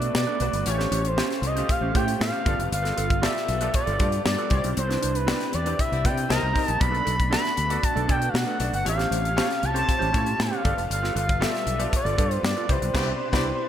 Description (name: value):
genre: polished 1980s jazz-funk pop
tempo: 117 BPM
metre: 4/4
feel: straight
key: unclear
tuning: A4 = 440 Hz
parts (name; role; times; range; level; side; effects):
- expressive portamento lead; melody; 0.0-13.7 s; B4 to B5; -27 LUFS; equal; chorus
- bright grand piano; accompaniment; 0.0-13.7 s; B#2 to E5; -31 LUFS; left 3 dB; analog chorus
- hollow soft pad; sustained chords; 0.0-13.7 s; B2 to B4; -36 LUFS; right 1 dB; ensemble chorus
- mellow electric guitar; riff; 0.0-13.5 s; C#4 to D5; -33 LUFS; right 6 dB; analog chorus
- fingered electric bass; bass; 0.0-13.5 s; F1 to C3; -28 LUFS; equal; none
- tight funk drum kit; drums; 0.0-13.5 s; crash cymbal, hi-hat, kick drum, snare drum; -27 LUFS; equal; gated reverb
- warm horn section; second line; 5.9-6.7, 12.9-13.5 s; B3 to Eb5; -34 LUFS; left 4 dB; none
room: moderate plate reverb, RT60 2.0 s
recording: bright 1980s-style digital production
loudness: -22 LUFS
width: side -10 dB against mid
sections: 0.0-13.7 A section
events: band accent 4.8-6.8, 13.0-13.7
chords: 0.0 Bm7; 0.7 A7alt; 2.5 G9; 4.5 Cmaj9; 6.3 Cm7; 6.8 Bm7; 8.9 A7alt; 10.7 G9; 12.7 Cmaj9